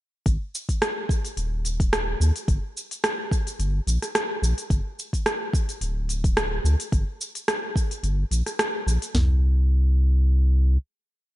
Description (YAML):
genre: organic downtempo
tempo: 108 BPM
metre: 4/4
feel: swing 55% on 16ths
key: unclear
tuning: A4 = 440 Hz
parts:
  - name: round analog bass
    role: bass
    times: 0.3-10.8 s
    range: D1 to Eb2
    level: -21 LUFS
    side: equal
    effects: none
  - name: afro-pop drum kit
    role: drums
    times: 0.3-9.3 s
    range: hi-hat, kick drum, snare drum, toms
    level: -23 LUFS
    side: equal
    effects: none
  - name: organic electronic drum kit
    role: drums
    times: 0.3-9.1 s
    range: hi-hat, rim click, shaker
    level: -27 LUFS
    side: right 1 dB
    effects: none
room: light reverb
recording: nothing above 11.0 kHz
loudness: -22 LUFS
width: side -16 dB against mid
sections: 0.3-9.1 groove; 9.1-11.4 final note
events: none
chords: none